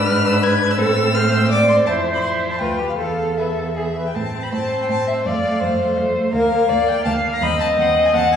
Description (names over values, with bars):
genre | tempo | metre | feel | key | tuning
quick classical-period movement for string quartet | 166 BPM | 3/4 | rubato | A minor | A4 = 440 Hz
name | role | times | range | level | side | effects
rich violin | melody | 0.0-8.4 s | E5 to G#6 | -23 LUFS | left 4 dB | none
rich violin | second line | 0.0-8.4 s | C4 to F#5 | -20 LUFS | left 1 dB | none
rich viola | accompaniment | 0.0-8.4 s | A3 to D5 | -22 LUFS | right 1 dB | none
rich cello | bass | 0.0-8.4 s | D2 to A2 | -23 LUFS | right 2 dB | none
room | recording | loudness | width
wet scoring stage reverb, RT60 1.6 s | heard from further back in the room, small room ambience | -16 LUFS | side -8 dB against mid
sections
0.0-4.2 A section; 4.2-8.4 B section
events
none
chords
0.0 E7/G#; 0.8 Am; 1.9 F5; 2.6 Bdim/D; 3.0 Esus4; 3.8 E; 4.2 Am; 5.3 F; 6.3 Bb/D; 7.4 D#dim7